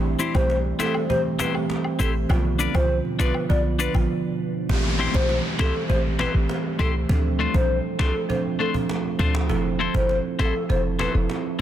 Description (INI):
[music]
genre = dancehall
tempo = 100 BPM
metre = 4/4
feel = straight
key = A minor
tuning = A4 = 440 Hz
[part]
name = marimba with soft mallets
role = accompaniment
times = 0.0-11.6 s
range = B2 to A4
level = -27 LUFS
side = right 4 dB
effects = none
[part]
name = deep dark ambient pad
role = sustained chords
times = 0.0-11.6 s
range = B2 to A4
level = -33 LUFS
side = right 2 dB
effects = chorus, built-in reverb
[part]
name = short 808-style bass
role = bass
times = 0.0-11.3 s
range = F1 to D2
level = -23 LUFS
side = equal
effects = none
[part]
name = cajon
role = drums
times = 0.1-11.4 s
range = none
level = -32 LUFS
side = equal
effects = none
[part]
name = clean electric guitar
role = arpeggios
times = 0.2-11.6 s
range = A3 to D5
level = -29 LUFS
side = left 7 dB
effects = none
[part]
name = cabasa and woodblock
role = percussion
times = 0.2-4.1 s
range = none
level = -35 LUFS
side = left 3 dB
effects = none
[part]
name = hollow clarinet-like synth lead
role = melody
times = 0.3-11.1 s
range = A4 to D5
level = -28 LUFS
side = left 2 dB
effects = chorus, tape echo
[part]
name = downlifter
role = sound effects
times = 4.7-9.5 s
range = none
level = -32 LUFS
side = equal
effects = none
[sound]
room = light reverb, studio reverb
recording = dense, heavily limited modern master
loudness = -20 LUFS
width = side -11 dB against mid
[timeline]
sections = 0.0-4.7 A section; 4.7-11.6 B section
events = break 4.1-4.7; hi-hats muted 4.7-11.6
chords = 0.0 Am7; 2.3 Bdim; 4.7 Am7; 7.1 Dm7; 9.5 Fmaj7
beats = 0.49 1.09 1.70 | 2.29 2.90 3.50 4.09 | 4.70 5.29 5.89 6.50 | 7.09 7.70 8.29 8.89 | 9.49 10.10 10.70 11.29